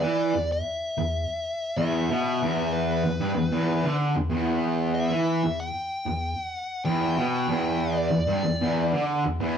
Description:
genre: metal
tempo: 94 BPM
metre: 4/4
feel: straight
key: E minor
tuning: A4 = 439 Hz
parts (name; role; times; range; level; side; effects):
- fuzz lead guitar; melody; 0.0-9.0 s; B4 to G5; -29 LUFS; left 1 dB; wah, distortion
- fuzz guitar; riff; 0.0-9.6 s; E2 to E3; -24 LUFS; equal; distortion
room: moderate large studio reverb, RT60 1.0 s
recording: band playing live in one room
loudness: -23 LUFS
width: side -8 dB against mid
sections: 0.0-9.6 A section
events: none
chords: 0.0 Em

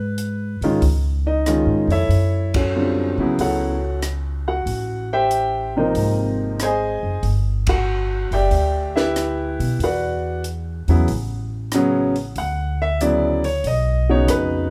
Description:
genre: jazz piano trio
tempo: 94 BPM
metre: 4/4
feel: swing 69% on 8ths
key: unclear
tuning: A4 = 440 Hz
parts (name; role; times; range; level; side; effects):
- clear upright piano; melody; 0.0-14.7 s; C3 to G#5; -23 LUFS; equal; none
- upright bass; bass; 0.0-14.7 s; F#1 to C#3; -24 LUFS; equal; none
- compact cocktail drum kit; drums; 0.2-14.5 s; hi-hat, kick drum, ride cymbal, rim click, snare drum; -32 LUFS; equal; none
room: light reverb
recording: none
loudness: -20 LUFS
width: mono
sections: 0.0-14.7 A section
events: band accent 2.4-2.7, 7.6-7.9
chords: 0.0 G#m; 0.8 C#; 2.1 F#m7; 4.7 Am7; 6.0 G#9; 7.2 G6; 9.8 Esus2; 11.1 Aadd9; 12.4 Dmaj7; 13.7 B

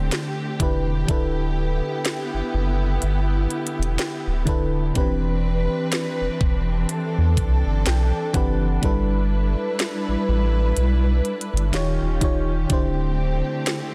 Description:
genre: contemporary R&B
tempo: 62 BPM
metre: 4/4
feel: swing 58% on 16ths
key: G major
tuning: A4 = 440 Hz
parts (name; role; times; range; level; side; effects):
- FM electric piano; accompaniment; 0.0-13.9 s; D3 to G5; -29 LUFS; equal; none
- warm studio string section; sustained chords; 0.0-13.9 s; D3 to B4; -30 LUFS; equal; none
- saturated sub bass; bass; 0.0-13.4 s; D1 to E2; -24 LUFS; equal; none
- trap drum kit; drums; 0.1-13.9 s; hi-hat, kick drum, snare drum; -27 LUFS; equal; none
room: light reverb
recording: dense, heavily limited modern master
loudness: -22 LUFS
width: mono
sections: 0.0-13.9 A section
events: FM electric piano fill 7.4-8.8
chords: 0.0 D7sus4; 1.1 G6/D; 5.0 Cmaj7/E; 8.8 G6; 11.7 Eb9; 12.7 D7sus4

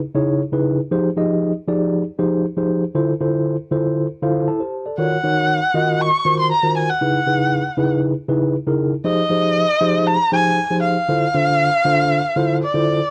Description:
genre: funk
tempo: 118 BPM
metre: 4/4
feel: straight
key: unclear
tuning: A4 = 440 Hz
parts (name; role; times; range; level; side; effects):
- mellow tine electric piano; accompaniment; 0.1-13.0 s; Db3 to A5; -20 LUFS; equal; none
- dark erhu; melody; 5.0-13.1 s; D5 to Db6; -20 LUFS; equal; slapback echo
room: light reverb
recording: dry, close 1970s-style studio recording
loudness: -18 LUFS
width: mono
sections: 0.0-13.1 A section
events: tine electric piano fill 4.0-5.0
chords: 0.0 Dbm9; 0.9 Fm9; 3.0 Dm9; 5.0 Ebm9; 7.0 Dbm9; 9.1 Fm9; 11.1 Dm9

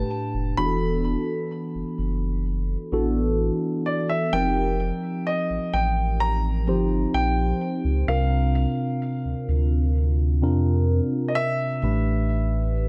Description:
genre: contemporary R&B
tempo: 64 BPM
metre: 4/4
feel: straight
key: unclear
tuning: A4 = 440 Hz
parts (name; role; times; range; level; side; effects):
- warm grand piano; melody; 0.0-12.9 s; D5 to B5; -30 LUFS; equal; tape echo
- mellow tine electric piano; accompaniment; 0.0-12.9 s; A2 to C5; -28 LUFS; equal; phaser
- warm sub bass; bass; 0.0-12.9 s; E1 to F2; -26 LUFS; equal; none
room: small room ambience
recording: none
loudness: -24 LUFS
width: mono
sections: 0.0-11.8 A section; 11.8-12.9 B section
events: none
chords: 0.0 A9sus4; 0.6 E9sus4; 4.3 F9sus4; 8.1 C9sus4; 11.8 A9sus4

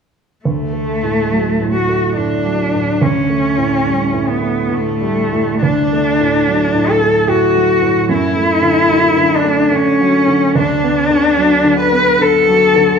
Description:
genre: classical, romantic duo for cello and grand piano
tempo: 71 BPM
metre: 3/4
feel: uneven beats, rubato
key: D major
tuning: A4 = 441 Hz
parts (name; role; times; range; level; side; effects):
- rich cello; melody; 0.5-13.0 s; A3 to B4; -13 LUFS; left 2 dB; none
- warm grand piano; accompaniment; 0.5-13.0 s; D2 to B3; -16 LUFS; right 3 dB; none
room: wet recital hall reverb, RT60 1.5 s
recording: minimal, uncompressed stereo recording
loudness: -12 LUFS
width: side -6 dB against mid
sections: 0.4-13.0 A section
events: none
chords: 0.4 D; 3.0 A7/D; 5.6 D; 8.1 D/F#; 10.6 Bm/D

